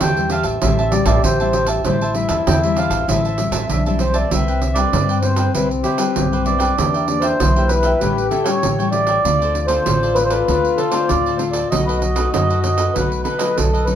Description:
samba and choro; 97 BPM; 4/4; straight; A minor, C major from 4.3 s; A4 = 439 Hz
mellow accordion; melody; 0.0-14.0 s; G4 to G5; -20 LUFS; right 1 dB
breathy trombone; second line; 0.0-13.9 s; C4 to G4; -23 LUFS; left 5 dB
cavaquinho; accompaniment; 0.0-14.0 s; D4 to A5; -26 LUFS; right 2 dB
nylon-string guitar; accompaniment; 0.0-14.0 s; F#2 to G4; -26 LUFS; left 6 dB
upright bass; bass; 0.0-14.0 s; A1 to G2; -21 LUFS; equal
pandeiro; percussion; 0.0-14.0 s; -23 LUFS; right 5 dB
moderate studio reverb, RT60 0.9 s; minimal, uncompressed stereo recording; -15 LUFS; side -9 dB against mid
0.0-4.3 A section; 4.3-14.0 B section
0.0 Am7; 4.3 Cmaj7; 6.8 Em7b5; 8.0 A7; 9.3 Dm7; 11.7 B7

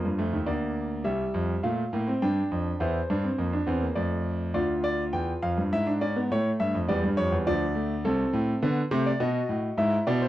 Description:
classical, baroque-style 3-part fugue for grand piano; 103 BPM; 3/4; straight; A4 = 441 Hz
clear concert grand piano; solo; 0.0-10.3 s; C2 to G5; -24 LUFS; equal
moderate studio reverb, RT60 0.5 s; worn, warbling old tape, cassette tape, warbly pitch drift; -24 LUFS; side -14 dB against mid
0.0-4.6 A section; 4.6-10.3 B section
0.5 Bb/D; 1.1 F/C; 2.2 G5; 2.8 C/E; 4.0 F; 4.6 Dm; 5.7 E7/G#; 6.3 A; 7.5 Dm; 8.0 Am/C; 9.2 B7; 9.8 E/G#

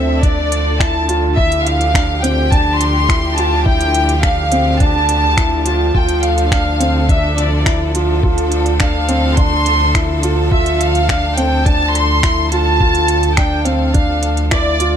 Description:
piano and strings electronica; 105 BPM; 4/4; straight; A4 = 443 Hz
dark studio violin section; melody; 0.0-15.0 s; D5 to C6; -17 LUFS; equal
rich symphonic string section; sustained chords; 0.0-15.0 s; D3 to A4; -23 LUFS; left 1 dB; sidechain pumping
felt-muted upright piano; riff; 0.0-15.0 s; C4 to F4; -20 LUFS; right 1 dB; tape echo
round analog bass; bass; 0.0-15.0 s; D2; -18 LUFS; equal; tube saturation, sidechain pumping
electronic kick drum; drums; 0.2-14.6 s; -16 LUFS; equal; small room ambience
organic electronic drum kit; drums; 0.2-14.9 s; finger snaps, hi-hat; -22 LUFS; right 1 dB; small room ambience
light reverb; -12 LUFS; side -8 dB against mid
0.0-15.0 A section
0.0 Dm; 5.9 F/D

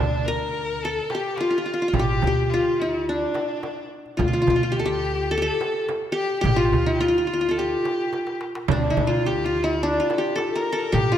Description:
Arabic maqam ensemble; 107 BPM; 4/4; straight; D maqam bayati; A4 = 440 Hz
qanun; melody; 0.0-11.2 s; D4 to Bb4; -23 LUFS; left 1 dB
bright violin; second line; 0.0-11.2 s; C4 to Bb4; -29 LUFS; left 2 dB
upright bass; bass; 0.0-11.2 s; A1 to D2; -27 LUFS; equal
darbuka; percussion; 0.5-11.2 s; -30 LUFS; left 1 dB
frame drum; percussion; 1.1-11.1 s; -30 LUFS; right 7 dB
wet concert hall reverb, RT60 2.1 s; -20 LUFS; side -10 dB against mid
0.0-11.2 A section
drum fill 8.1-8.7

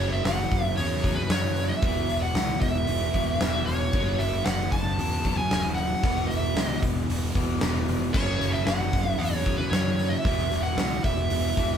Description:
hard rock; 114 BPM; 4/4; straight; A4 = 440 Hz
high-gain lead guitar; melody; 0.0-11.8 s; B4 to A5; -29 LUFS; right 2 dB; distortion
distorted electric guitar; riff; 0.0-11.8 s; E2 to F#3; -34 LUFS; right 2 dB; distortion
overdriven semi-hollow guitar; riff; 0.0-11.8 s; E2 to F#3; -34 LUFS; left 4 dB
sludgy distorted guitar; riff; 0.0-11.8 s; E2 to F#3; -36 LUFS; equal
fuzz picked electric bass; bass; 0.0-11.8 s; D#1 to F#2; -29 LUFS; equal; overdrive
huge arena drum kit; drums; 0.3-11.7 s; crash cymbal, hi-hat, kick drum, snare drum; -28 LUFS; equal
light reverb; band playing live in one room; -23 LUFS; side -8 dB against mid
0.0-11.8 A section
0.0 F#5; 1.8 E5; 3.9 F#m; 6.0 E5; 8.1 F#5; 10.3 E5

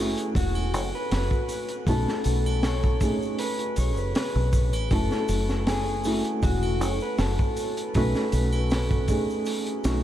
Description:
trip hop; 79 BPM; 4/4; straight; F# dorian; A4 = 436 Hz
electric guitar at the edge of break-up; melody; 0.0-10.0 s; F#4 to C#5; -31 LUFS; left 2 dB; tape echo
felt-muted upright piano; accompaniment; 0.0-10.0 s; A3 to G#4; -29 LUFS; right 1 dB; tremolo, vintage 12-bit sampler grit, tape echo
deep dub fingered electric bass; bass; 0.0-10.0 s; E1 to B1; -26 LUFS; equal
crunchy breakbeat drum kit; drums; 0.2-10.0 s; hi-hat, kick drum, snare drum; -28 LUFS; equal
egg shaker and triangle; percussion; 0.2-10.0 s; -41 LUFS; right 3 dB
moderate huge ambient reverb, RT60 8.7 s; dreamy mix soaked in reverb, vinyl crackle; -23 LUFS; side -12 dB against mid
0.0-10.0 A section
0.0 F#m7; 1.9 B7; 4.9 F#m7; 7.9 B7

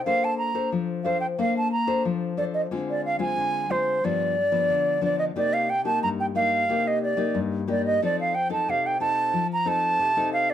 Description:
samba; 90 BPM; 4/4; straight; A4 = 438 Hz
silver concert flute; melody; 0.0-10.5 s; C5 to Bb5; -23 LUFS; right 2 dB
nylon-string guitar; accompaniment; 0.0-10.5 s; G2 to C5; -27 LUFS; left 5 dB
wet studio reverb, RT60 0.6 s; -22 LUFS; side -10 dB against mid
0.0-10.5 A section
0.1 Bbmaj9; 2.7 Dm7b5; 4.0 G7; 5.4 Cm7; 8.0 F7

